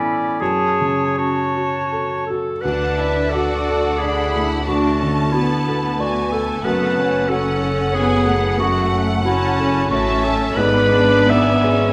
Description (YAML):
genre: cinematic, emotional film score for orchestra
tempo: 74-93 BPM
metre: 3/4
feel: rubato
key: unclear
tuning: A4 = 439 Hz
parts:
  - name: clear clarinet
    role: second line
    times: 0.0-11.9 s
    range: C#4 to E5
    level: -23 LUFS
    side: equal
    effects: none
  - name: clear oboe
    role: second line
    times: 0.0-2.3 s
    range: C#5 to D5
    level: -29 LUFS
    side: equal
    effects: none
  - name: concert flute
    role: second line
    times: 0.0-2.3 s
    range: A5 to B5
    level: -27 LUFS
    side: equal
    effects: none
  - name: felt-muted upright piano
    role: accompaniment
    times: 0.0-11.9 s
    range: D2 to D5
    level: -25 LUFS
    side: equal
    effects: none
  - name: rich symphonic violin section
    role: melody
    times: 2.6-11.9 s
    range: F#5 to B5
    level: -30 LUFS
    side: equal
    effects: none
  - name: warm symphonic violin section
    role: second line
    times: 2.6-11.9 s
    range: D5 to A5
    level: -30 LUFS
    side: equal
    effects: none
  - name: dark symphonic viola section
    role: accompaniment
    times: 2.6-11.9 s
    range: A3 to D4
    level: -27 LUFS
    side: equal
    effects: none
  - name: clear studio cello section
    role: bass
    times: 2.6-11.9 s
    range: G#3 to F#4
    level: -28 LUFS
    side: equal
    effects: none
  - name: rich symphonic double bass section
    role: bass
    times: 2.6-11.9 s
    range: F#1 to D2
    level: -26 LUFS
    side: equal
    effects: none
room: wet recital hall reverb, RT60 1.5 s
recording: recorded in a church or concert hall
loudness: -18 LUFS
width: mono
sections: 0.0-2.6 A section; 2.6-11.9 B section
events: none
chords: 0.4 F#m; 2.6 D; 6.6 F#m; 10.6 G#dim